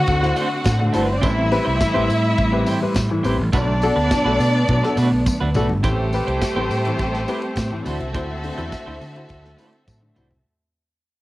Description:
disco; 104 BPM; 4/4; straight; A dorian; A4 = 438 Hz
rich studio violin section; second line; 0.0-10.4 s; A3 to F#5; -23 LUFS; equal; cassette tape
clear studio string section; sustained chords; 0.0-10.4 s; D3 to F#4; -26 LUFS; right 1 dB; cassette tape
warm grand piano; accompaniment; 0.1-10.3 s; A2 to C5; -25 LUFS; left 2 dB; cassette tape
overdriven fingered electric bass; bass; 0.1-10.4 s; G1 to D3; -22 LUFS; equal
modern studio drum kit; drums; 0.1-10.4 s; hi-hat, kick drum, snare drum, toms; -25 LUFS; equal; cassette tape
tambourine; percussion; 0.1-10.3 s; -38 LUFS; left 2 dB
clean electric guitar; accompaniment; 0.2-10.4 s; A3 to C5; -28 LUFS; right 4 dB; tremolo, cassette tape
small room ambience; home recording on cassette; -17 LUFS; side -17 dB against mid
0.0-5.8 A section; 5.8-10.5 B section
drum fill 5.3-5.8, 9.9-10.5; fade-out 5.8-10.5
0.0 D7; 1.2 Am7; 3.5 Bm7; 5.8 Am7; 7.9 D7
0.07 0.65 | 1.23 1.80 2.38 2.96 | 3.53 4.11 4.69 5.26 | 5.84 6.42 6.99 7.57 | 8.15 8.72 9.30 9.88

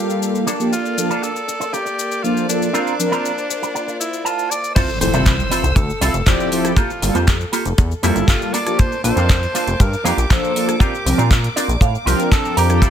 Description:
nu-disco, nu disco; 119 BPM; 4/4; straight; F major; A4 = 440 Hz
raspy tenor saxophone; melody; 0.0-12.9 s; D4 to D5; -24 LUFS; equal; tape echo
mellow synth brass; accompaniment; 0.0-12.8 s; F3 to D5; -21 LUFS; equal; chorus
warm chamber violin section; sustained chords; 0.0-12.9 s; Bb3 to E6; -29 LUFS; left 1 dB; sidechain pumping
house drum kit; drums; 0.1-12.9 s; crash cymbal, handclaps, hi-hat, rim click, shaker; -24 LUFS; left 2 dB; studio reverb
electric guitar with an envelope filter; riff; 0.5-12.9 s; Bb3 to Bb5; -23 LUFS; right 3 dB; analog chorus, low-pass filter
kick drum; drums; 4.8-12.9 s; -14 LUFS; equal; studio reverb
impact; sound effects; 4.8-6.8 s; -26 LUFS; equal
chorused synth bass; bass; 5.0-12.9 s; F1 to Bb2; -19 LUFS; equal; tube saturation
small room ambience; -15 LUFS; side -9 dB against mid
0.0-4.8 A section; 4.8-12.9 B section
clean electric guitar fill 4.0-4.8, 11.3-12.8; drop 4.8-12.9; impact 4.8-6.8
0.5 Bbmaj7; 2.7 C9sus4; 4.8 Fmaj7; 6.8 Gm9; 8.5 Bbmaj7; 10.8 C9sus4
0.22 | 0.72 1.23 1.73 2.23 | 2.74 3.24 3.75 4.25 | 4.75 5.26 5.76 6.27 | 6.77 7.28 7.78 8.28 | 8.79 9.29 9.80 10.30 | 10.80 11.31 11.81 12.32 | 12.82

